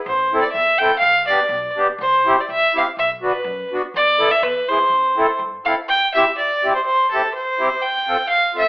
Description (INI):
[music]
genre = alpine folk, alpine dance band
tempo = 125 BPM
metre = 2/4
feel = swing 55% on 8ths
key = A minor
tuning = A4 = 440 Hz
[part]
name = warm fiddle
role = melody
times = 0.1-8.7 s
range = A4 to G5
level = -16 LUFS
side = equal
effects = none
[part]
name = upright bass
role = bass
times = 0.1-5.6 s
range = A1 to G2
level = -42 LUFS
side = equal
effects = none
[part]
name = accordion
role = accompaniment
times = 0.3-8.6 s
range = B3 to A4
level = -20 LUFS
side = equal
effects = none
[sound]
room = moderate large studio reverb, RT60 0.8 s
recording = band playing live in one room, telephone sound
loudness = -15 LUFS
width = side -22 dB against mid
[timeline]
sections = 0.0-5.9 A section; 5.9-8.7 B section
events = none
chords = 0.1 Am; 1.0 G/B; 2.0 C; 3.0 Bm; 3.9 E7sus4; 4.4 E; 4.9 Am; 5.9 C; 7.8 F